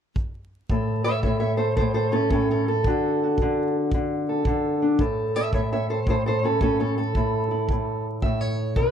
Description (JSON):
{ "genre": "acoustic country blues, solo or duo", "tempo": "112 BPM", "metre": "4/4", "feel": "swing 64% on 8ths", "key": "A major", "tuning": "A4 = 441 Hz", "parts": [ { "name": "kick drum", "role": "drums", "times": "0.2-8.9 s", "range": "none", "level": "-27 LUFS", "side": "equal", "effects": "none" }, { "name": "fingerpicked steel-string acoustic guitar", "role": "melody", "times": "0.7-8.9 s", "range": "A2 to E5", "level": "-22 LUFS", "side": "equal", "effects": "none" } ], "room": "light reverb", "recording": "dark, warm production, vinyl crackle, lossy compression artefacts", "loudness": "-21 LUFS", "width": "side -8 dB against mid", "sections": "0.7-8.9 A section", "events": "none", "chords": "0.0 N.C.; 0.7 A; 2.8 D; 5.0 A" }